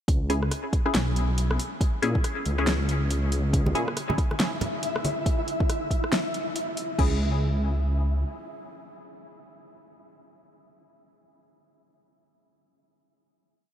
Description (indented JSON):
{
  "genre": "deep dubstep",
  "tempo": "139 BPM",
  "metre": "4/4",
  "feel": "swing 60% on 16ths, half-time",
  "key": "C# minor",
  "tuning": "A4 = 441 Hz",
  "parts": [
    { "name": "dark detuned saw bass", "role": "bass", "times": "0.1-3.9, 7.0-8.2 s", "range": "B1 to A#2", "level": "-25 LUFS", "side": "equal", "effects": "none" },
    { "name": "deep house drum kit", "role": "drums", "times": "0.1-7.1 s", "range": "crash cymbal, hi-hat, rim click, snare drum", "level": "-31 LUFS", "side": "equal", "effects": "small room reverb" },
    { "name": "electronic kick drum", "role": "drums", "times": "0.1-7.1 s", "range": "none", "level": "-24 LUFS", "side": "equal", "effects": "small room reverb" },
    { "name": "filtered dub chord stab", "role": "stabs", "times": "0.3-3.9, 7.0-10.5 s", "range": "C#4 to G#4", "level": "-32 LUFS", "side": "left 1 dB", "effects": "phaser, dub echo" },
    { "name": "flickering grainy texture", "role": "texture", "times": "4.3-7.0 s", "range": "E4 to E5", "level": "-33 LUFS", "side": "left 1 dB", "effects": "built-in reverb, wide subtle chorus" },
    { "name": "bongos and congas", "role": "percussion", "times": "3.7-5.1 s", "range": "none", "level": "-34 LUFS", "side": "right 1 dB", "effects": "dub echo" }
  ],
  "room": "light reverb",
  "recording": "none",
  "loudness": "-23 LUFS",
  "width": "side -10 dB against mid",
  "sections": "0.1-7.0 drop; 7.0-10.4 final chord",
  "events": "drop 0.1-7.0",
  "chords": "0.1 C#m",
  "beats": "| 0.08 0.51 0.94 1.38 | 1.81 2.24 2.67 3.10 | 3.53 3.97 4.40 4.83 | 5.26 5.69 6.12 6.56 | 6.99 7.42 7.85 8.28 | 8.71 9.15 9.58 10.01"
}